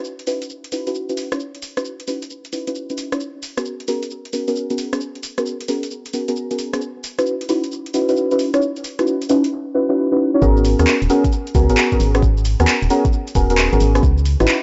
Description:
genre	UK garage, two-step garage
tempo	133 BPM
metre	4/4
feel	swing 65% on 16ths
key	G# minor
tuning	A4 = 445 Hz
part	deep mellow chord stab	stabs	0.0-14.6 s	B3 to C#5	-21 LUFS	equal	chorus, phaser, analog delay
part	garage drum kit	drums	0.0-14.6 s	handclaps, hi-hat, rim click, shaker	-26 LUFS	equal	overdrive
part	organ-like FM bass	bass	10.4-14.5 s	D#1 to D#2	-19 LUFS	equal	none
part	electronic kick drum	drums	10.4-14.1 s	none	-20 LUFS	equal	overdrive
room	little or no reverb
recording	dry, gritty hardware recording, nothing above 7.8 kHz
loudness	-19 LUFS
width	mono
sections	0.0-10.4 A section; 10.4-14.6 B section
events	drop 10.4-14.6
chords	0.0 C#m11; 3.2 G#m11; 6.8 C#m11; 10.4 G#m11; 14.0 C#m11

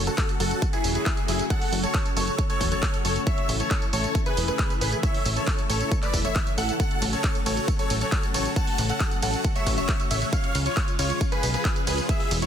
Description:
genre	uplifting trance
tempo	136 BPM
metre	4/4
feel	straight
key	F# minor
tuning	A4 = 441 Hz
part	plucky analog bass	bass	0.0-12.4 s	E1 to C#2	-27 LUFS	equal	sidechain pumping
part	big supersaw lead	melody	0.1-12.5 s	E4 to A5	-29 LUFS	equal	phaser, sidechain pumping, digital delay
part	bright concert grand piano	second line	0.1-12.5 s	G#4 to A5	-35 LUFS	left 2 dB	sidechain pumping, ping-pong delay
part	punchy analog drum machine	drums	0.1-12.5 s	handclaps, hi-hat, ride cymbal, tambourine	-30 LUFS	right 1 dB	sidechain pumping on hats, sidechain pumping on perc, sidechain pumping on cymbals
part	electronic kick drum	drums	0.2-12.2 s	none	-26 LUFS	equal	overdrive
room	light reverb, digital ambience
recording	dense, heavily limited modern master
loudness	-22 LUFS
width	side -9 dB against mid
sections	0.0-12.5 A section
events	none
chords	0.0 F#m; 3.3 A; 6.8 F#m/A; 10.3 C#

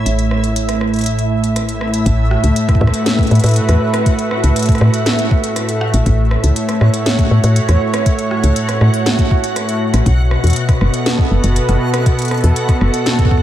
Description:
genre	IDM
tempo	120 BPM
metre	4/4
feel	straight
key	A major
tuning	A4 = 439 Hz
part	warm analog pad	sustained chords	0.0-13.4 s	A2 to E5	-17 LUFS	right 1 dB	chorus
part	woody FM bass	bass	0.0-12.9 s	F#1 to A2	-13 LUFS	equal	tube saturation
part	backwards swelling texture	texture	0.0-13.4 s	E4 to F#5	-24 LUFS	equal	built-in reverb
part	industrial drum kit	drums	0.1-13.3 s	hi-hat, rim click, snare drum	-21 LUFS	equal	digital delay
part	electronic kick drum	drums	2.1-13.4 s	none	-13 LUFS	equal	none
room	light reverb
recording	none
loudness	-12 LUFS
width	side -12 dB against mid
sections	0.0-2.1 A section; 2.1-13.4 B section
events	none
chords	0.0 A5; 2.1 Asus2; 10.1 B7sus4

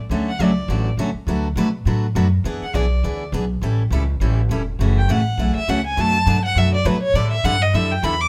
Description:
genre	acoustic string swing (jazz manouche)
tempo	204 BPM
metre	4/4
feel	swing 58% on 8ths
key	D major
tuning	A4 = 440 Hz
part	picked steel-string acoustic guitar	accompaniment	0.1-8.1 s	B2 to B4	-25 LUFS	equal	none
part	upright bass	bass	0.1-8.3 s	E1 to B2	-22 LUFS	equal	none
part	warm violin	melody	0.3-8.3 s	B4 to D6	-24 LUFS	equal	none
room	light reverb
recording	none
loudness	-20 LUFS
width	mono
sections	0.1-8.3 A section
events	violin solo 0.1-8.3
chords	0.1 Dmaj7; 1.3 Bm7/D; 2.5 E7; 3.6 A7; 4.8 F#m7; 6.0 D6/F#; 7.1 A7sus4

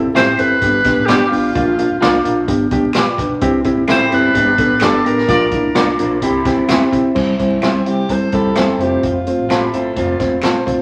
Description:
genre	uptempo 1960s-style soul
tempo	128 BPM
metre	4/4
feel	straight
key	C major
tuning	A4 = 445 Hz
part	reed electric piano	accompaniment	0.0-10.8 s	G3 to D5	-18 LUFS	equal	fast tremolo
part	upright bass	bass	0.0-10.8 s	E1 to G2	-30 LUFS	equal	none
part	electric guitar at the edge of break-up	stabs	0.1-10.6 s	E4 to D5	-24 LUFS	equal	none
part	warm alto saxophone	melody	0.2-10.4 s	E4 to C5	-21 LUFS	equal	none
part	glockenspiel with soft plastic mallets	second line	0.2-5.9 s	F6 to C7	-30 LUFS	equal	none
part	swinging big-band drum kit	drums	0.2-10.8 s	crash cymbal, hi-hat, kick drum, snare drum	-24 LUFS	equal	none
part	finger snaps	percussion	0.2-10.5 s	none	-32 LUFS	equal	none
part	electric guitar through a small old amp	riff	3.9-10.6 s	Bb3 to A4	-25 LUFS	equal	none
part	mellow horn section	second line	5.3-5.4 s	F4 to D5	-23 LUFS	equal	none
room	wet large studio reverb, RT60 1.2 s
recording	vinyl crackle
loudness	-15 LUFS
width	mono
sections	0.0-7.2 A section; 7.2-10.8 B section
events	band accent 5.3-7.2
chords	0.0 C; 0.6 G; 1.6 Bb; 2.5 G; 3.4 C; 4.4 G; 5.3 Bb; 6.2 C; 8.8 F

